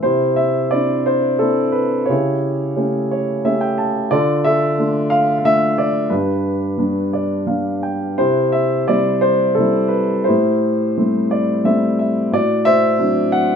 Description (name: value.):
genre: classical, lyrical solo piano.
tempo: 88 BPM.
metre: 3/4.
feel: rubato.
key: C major.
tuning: A4 = 440 Hz.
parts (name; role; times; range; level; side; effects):
dark baby grand piano; solo; 0.0-13.6 s; G2 to A5; -15 LUFS; equal; none.
room: moderate studio reverb, RT60 0.6 s.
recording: none.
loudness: -15 LUFS.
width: side -7 dB against mid.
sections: 0.0-13.6 A section.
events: grand piano fill 2.8-4.1, 6.8-8.2, 11.0-12.3.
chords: 0.0 Cadd9; 2.1 A7/C#; 4.1 Dm; 6.1 G; 8.2 C; 10.3 Am7; 12.3 D7/A.